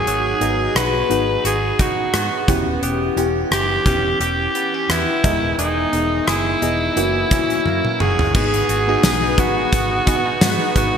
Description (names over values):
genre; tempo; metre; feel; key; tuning
1980s-style pop; 87 BPM; 4/4; swing 55% on 16ths; unclear; A4 = 439 Hz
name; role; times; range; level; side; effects
raspy alto saxophone; melody; 0.0-11.0 s; D#4 to B4; -20 LUFS; equal; digital delay
FM electric piano with soft pad layer; accompaniment; 0.0-11.0 s; G#2 to E5; -23 LUFS; left 1 dB; chorus, phaser
direct-recorded clean electric guitar; riff; 0.0-11.0 s; D#3 to G#4; -26 LUFS; right 5 dB; wide subtle chorus, digital delay
vintage muted fingered electric bass; bass; 0.0-11.0 s; D#1 to G#2; -25 LUFS; equal; none
gated 80s drum kit; drums; 0.1-10.9 s; crash cymbal, hi-hat, kick drum, rim click, snare drum, toms; -20 LUFS; equal; gated reverb
phased analog pad; sustained chords; 8.3-11.0 s; B4 to D#6; -27 LUFS; left 2 dB; phaser, chorus
tambourine; percussion; 8.3-10.9 s; none; -35 LUFS; left 6 dB; none
room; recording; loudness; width
wet lush hall reverb, RT60 3.1 s; bright 1980s-style digital production; -16 LUFS; side -7 dB against mid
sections
0.0-8.3 A section; 8.3-11.0 B section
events
drum fill 7.7-8.3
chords
0.0 G#m7; 2.5 Em6; 5.2 Emaj7; 7.0 F#7; 8.3 G#m7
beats
| 0.07 0.76 1.45 2.14 | 2.83 3.52 4.21 4.90 | 5.59 6.28 6.97 7.66 | 8.35 9.04 9.72 10.41